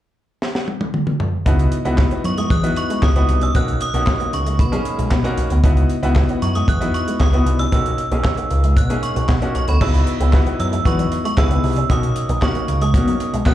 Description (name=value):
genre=early-eighties boogie funk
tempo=115 BPM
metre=4/4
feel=straight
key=C# dorian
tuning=A4 = 441 Hz
part: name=tight funk drum kit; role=drums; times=0.4-13.5 s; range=crash cymbal, handclaps, hi-hat, kick drum, snare drum, toms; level=-19 LUFS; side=equal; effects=none
part: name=clear baby grand piano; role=accompaniment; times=1.5-13.5 s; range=A#3 to G#4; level=-24 LUFS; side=left 2 dB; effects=slapback echo
part: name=electric guitar with an envelope filter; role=riff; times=1.5-13.4 s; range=F#3 to C#4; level=-28 LUFS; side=right 2 dB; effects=ensemble chorus, slapback echo
part: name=fat analog bass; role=bass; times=1.5-13.5 s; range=B1 to B2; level=-18 LUFS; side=equal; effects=none
part: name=metallic FM bell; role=melody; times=2.3-13.5 s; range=B5 to F#6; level=-25 LUFS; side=right 2 dB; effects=chorus, slapback echo
room=light reverb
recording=live gig heard through the venue's PA, club reverb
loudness=-15 LUFS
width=side -13 dB against mid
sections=0.0-1.5 A section; 1.5-9.8 B section; 9.8-13.5 C section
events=drum fill 0.4-1.5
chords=0.0 N.C.; 1.5 C#m11; 3.5 Bmaj9; 5.6 C#m11; 7.7 Bmaj9; 9.8 C#m11; 11.9 Bmaj9